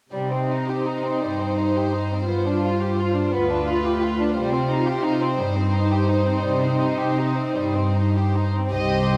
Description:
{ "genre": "classical, slow romantic movement for string orchestra", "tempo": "48-62 BPM (dotted quarters)", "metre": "6/8", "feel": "rubato", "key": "C minor", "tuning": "A4 = 440 Hz", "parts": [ { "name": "warm symphonic violin section", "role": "melody", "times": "0.1-9.2 s", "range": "B4 to Eb5", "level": "-31 LUFS", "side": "equal", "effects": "none" }, { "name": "warm symphonic violin section", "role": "second line", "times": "0.1-9.2 s", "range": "G3 to C5", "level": "-28 LUFS", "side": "equal", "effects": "none" }, { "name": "dark symphonic viola section", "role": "accompaniment", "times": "0.1-9.2 s", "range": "G3 to F4", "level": "-29 LUFS", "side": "equal", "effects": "none" }, { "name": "rich symphonic cello section", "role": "bass", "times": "0.1-8.5 s", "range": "D2 to C3", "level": "-26 LUFS", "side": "equal", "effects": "none" }, { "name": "warm chamber double bass section", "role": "bass", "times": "8.7-9.2 s", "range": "C2", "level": "-27 LUFS", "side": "equal", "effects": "none" } ], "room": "moderate concert hall reverb, RT60 1.9 s", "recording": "dark, warm production", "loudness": "-22 LUFS", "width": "mono", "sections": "0.1-8.7 A section", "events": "none", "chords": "0.1 Cm; 2.3 G7; 4.4 Cm" }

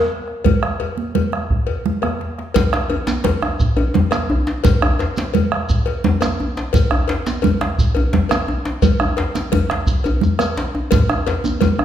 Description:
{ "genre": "west african traditional, West African drum ensemble", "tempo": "115 BPM (dotted quarters)", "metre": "12/8", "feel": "straight", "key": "none", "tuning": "none", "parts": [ { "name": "bombo", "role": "percussion", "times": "0.3-11.8 s", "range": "none", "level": "-20 LUFS", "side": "right 2 dB", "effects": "none" }, { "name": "cowbell", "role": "percussion", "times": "0.4-11.8 s", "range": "none", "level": "-25 LUFS", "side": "left 5 dB", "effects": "none" }, { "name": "congas", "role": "percussion", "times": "0.5-11.8 s", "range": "none", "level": "-22 LUFS", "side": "right 4 dB", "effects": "none" }, { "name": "djembe", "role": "percussion", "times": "0.5-11.8 s", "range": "none", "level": "-23 LUFS", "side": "left 2 dB", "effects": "none" }, { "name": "djembe", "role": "percussion", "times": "2.6-11.8 s", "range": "none", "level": "-22 LUFS", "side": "left 1 dB", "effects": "none" }, { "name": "shekere", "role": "percussion", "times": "2.6-11.7 s", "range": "none", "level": "-28 LUFS", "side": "right 2 dB", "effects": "none" } ], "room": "wet recital hall reverb, RT60 1.5 s", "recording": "recorded in a church or concert hall", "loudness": "-16 LUFS", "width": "side -10 dB against mid", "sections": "0.0-2.5 A section; 2.5-11.8 B section", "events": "drum fill 1.7-2.5", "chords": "none" }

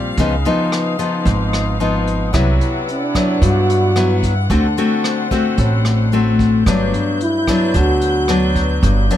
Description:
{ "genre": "bossa nova", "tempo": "111 BPM", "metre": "4/4", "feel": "straight", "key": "G major", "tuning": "A4 = 440 Hz", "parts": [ { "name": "nylon-string guitar", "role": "accompaniment", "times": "0.0-9.2 s", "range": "G2 to F#4", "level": "-18 LUFS", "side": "left 3 dB", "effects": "none" }, { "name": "warm studio string section", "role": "sustained chords", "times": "0.0-9.2 s", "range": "F#3 to G6", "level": "-24 LUFS", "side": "left 2 dB", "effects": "none" }, { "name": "upright bass", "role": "bass", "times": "0.0-9.1 s", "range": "G1 to G2", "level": "-17 LUFS", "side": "right 1 dB", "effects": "none" }, { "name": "vintage brush drum kit", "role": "drums", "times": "0.2-9.2 s", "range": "hi-hat, kick drum, rim click", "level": "-23 LUFS", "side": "right 1 dB", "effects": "none" }, { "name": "dark trombone", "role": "melody", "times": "2.9-8.6 s", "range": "D4 to F#4", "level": "-18 LUFS", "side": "right 2 dB", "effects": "none" } ], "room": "little or no reverb", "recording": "close, detailed microphones", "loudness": "-14 LUFS", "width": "side -11 dB against mid", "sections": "0.0-9.2 A section", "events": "trombone solo 0.0-9.2", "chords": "0.2 C#9; 2.3 Cmaj9#11; 4.5 D7; 6.7 Gmaj7" }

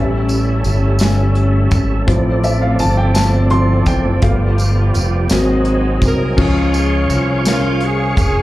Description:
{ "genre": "slow gospel", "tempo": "56 BPM (dotted quarters)", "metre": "6/8", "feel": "straight", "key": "unclear", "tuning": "A4 = 440 Hz", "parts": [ { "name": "warm upright piano", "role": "accompaniment", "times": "0.0-8.4 s", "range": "F3 to C6", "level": "-20 LUFS", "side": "left 2 dB", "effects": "slapback echo" }, { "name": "dark studio string section", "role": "sustained chords", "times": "0.0-6.4 s", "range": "F3 to G4", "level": "-24 LUFS", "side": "equal", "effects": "none" }, { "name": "tonewheel organ", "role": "sustained chords", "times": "0.0-8.4 s", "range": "F3 to Db6", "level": "-21 LUFS", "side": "right 2 dB", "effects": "fast rotary speaker, chorus vibrato" }, { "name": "modern bright fingered electric bass", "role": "bass", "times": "0.0-8.4 s", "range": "F1 to Db2", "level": "-16 LUFS", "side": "equal", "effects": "none" }, { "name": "modern studio drum kit", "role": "drums", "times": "0.3-8.3 s", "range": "crash cymbal, hi-hat, kick drum, snare drum", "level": "-18 LUFS", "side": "equal", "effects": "none" }, { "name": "tambourine", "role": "percussion", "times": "0.3-8.4 s", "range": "none", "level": "-28 LUFS", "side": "right 1 dB", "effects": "none" }, { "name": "clear saxophone section", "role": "melody", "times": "6.1-8.4 s", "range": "Db4 to Bb4", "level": "-20 LUFS", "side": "right 2 dB", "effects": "slapback echo" } ], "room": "light reverb", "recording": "live gig heard through the venue's PA, club reverb", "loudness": "-12 LUFS", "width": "side -16 dB against mid", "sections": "0.0-6.4 A section; 6.4-8.4 B section", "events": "upright piano solo 0.0-6.4", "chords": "0.0 A7; 2.1 Dm7; 4.2 G7; 5.3 Ab7; 6.4 Db" }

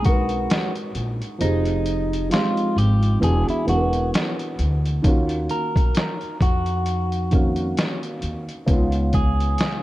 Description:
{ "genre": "lo-fi hip hop", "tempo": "66 BPM", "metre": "4/4", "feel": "swing 57% on 16ths", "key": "unclear", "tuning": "A4 = 440 Hz", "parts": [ { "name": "electric guitar at the edge of break-up", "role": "melody", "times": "0.0-9.8 s", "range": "Eb4 to Bb4", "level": "-27 LUFS", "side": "equal", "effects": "phaser, low-pass filter, dub echo" }, { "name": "felt-muted upright piano", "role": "accompaniment", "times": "0.0-9.8 s", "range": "Db3 to F5", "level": "-25 LUFS", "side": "right 1 dB", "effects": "cassette tape, low-pass filter" }, { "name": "upright bass", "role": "bass", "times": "0.0-9.5 s", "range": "E1 to F2", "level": "-22 LUFS", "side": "equal", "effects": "none" }, { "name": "trip hop sampler-style drum kit", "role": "drums", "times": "0.0-9.8 s", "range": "hi-hat, kick drum, snare drum", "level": "-22 LUFS", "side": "equal", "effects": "none" } ], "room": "light reverb, digital ambience", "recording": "echo-heavy mix, cassette tape", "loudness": "-19 LUFS", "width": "side -16 dB against mid", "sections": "0.0-5.0 A section; 5.0-9.8 B section", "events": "kick muted 1.4-5.0", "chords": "0.0 Abm9; 1.4 Fm9; 3.2 E9; 5.0 Ebm7; 8.7 Db9" }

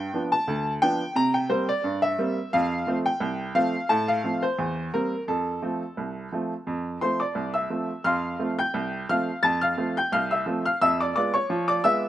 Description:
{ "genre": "ragtime piano", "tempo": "87 BPM", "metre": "2/4", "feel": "swing 54% on 16ths", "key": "F major", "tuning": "A4 = 437 Hz", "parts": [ { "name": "bright upright piano", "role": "solo", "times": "0.0-12.1 s", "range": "C2 to A6", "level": "-23 LUFS", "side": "equal", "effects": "none" } ], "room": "little or no reverb", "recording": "recorded outdoors, with no room sound, nothing above 10.4 kHz", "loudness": "-23 LUFS", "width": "side -12 dB against mid", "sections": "0.0-8.1 A section; 8.1-12.1 A section", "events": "none", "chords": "0.0 G7; 1.2 C5; 2.5 F; 3.9 F/A; 4.6 C7/E; 5.3 F; 10.8 Fdim7" }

